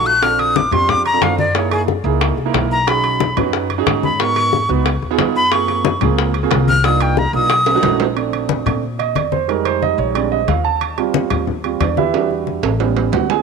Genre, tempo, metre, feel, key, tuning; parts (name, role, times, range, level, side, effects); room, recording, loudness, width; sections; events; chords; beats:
Afro-Cuban jazz; 181 BPM; 4/4; straight; A4 = 445 Hz
breathy bright jazz flute; melody; 0.0-8.0 s; Ab4 to F#6; -17 LUFS; left 1 dB
warm concert grand piano; accompaniment; 0.0-13.4 s; G3 to A5; -19 LUFS; right 12 dB
upright bass; bass; 0.0-13.4 s; A1 to Bb2; -22 LUFS; left 2 dB
congas; percussion; 0.1-13.4 s; -23 LUFS; left 12 dB
bongos; percussion; 0.2-8.1 s; -23 LUFS; left 15 dB
timbales; percussion; 0.2-13.4 s; -24 LUFS; right 13 dB
light reverb, small room ambience; 1960s-style stereo with parts hard left and right; -14 LUFS; side -5 dB against mid
0.0-8.2 A section; 8.2-13.4 A section
flute solo 0.0-8.2; drum fill 7.7-8.2, 12.1-13.4; grand piano solo 8.2-13.4
0.2 Bbmaj7; 1.6 Gb13; 2.9 B6; 4.2 Abm7; 4.9 Db7; 5.5 Gbmaj9#11; 6.8 Cm11; 7.5 B9; 8.2 Bbmaj7; 9.5 Fm7; 10.2 Bb13; 10.8 Eb6; 12.1 Em7; 12.8 A9
| 0.22 0.56 0.89 1.22 | 1.55 1.88 2.21 2.54 | 2.88 3.21 3.54 3.87 | 4.20 4.53 4.86 5.19 | 5.52 5.85 6.18 6.51 | 6.84 7.17 7.50 7.83 | 8.17 8.50 8.83 9.16 | 9.49 9.82 10.15 10.48 | 10.81 11.14 11.47 11.81 | 12.14 12.47 12.80 13.13